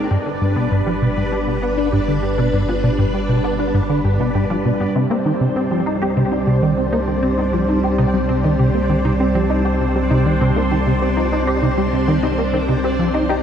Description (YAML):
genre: ambient, sequencer-driven space music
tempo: 99 BPM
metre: 4/4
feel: straight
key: C minor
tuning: A4 = 440 Hz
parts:
  - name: string machine, full ensemble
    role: sustained chords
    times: 0.0-13.4 s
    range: G3 to C5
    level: -20 LUFS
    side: equal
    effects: ensemble chorus
  - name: plucky analog bass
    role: riff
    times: 0.0-13.4 s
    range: G2 to G4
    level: -19 LUFS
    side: equal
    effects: ensemble chorus, ping-pong delay
  - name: warm sub bass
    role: bass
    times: 0.0-13.4 s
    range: G1 to C2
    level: -25 LUFS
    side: equal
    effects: none
  - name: bubbling stepped-filter texture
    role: texture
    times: 0.0-13.4 s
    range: D4 to D5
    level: -28 LUFS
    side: equal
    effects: chorus, built-in reverb
  - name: wide unison pluck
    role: arpeggios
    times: 0.1-13.4 s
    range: B3 to G4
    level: -29 LUFS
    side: left 2 dB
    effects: auto-pan, ping-pong delay
room: moderate plate reverb, RT60 3.7 s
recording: dark, warm production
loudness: -15 LUFS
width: side -8 dB against mid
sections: 0.0-13.4 A section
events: none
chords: 0.1 G; 5.0 Cm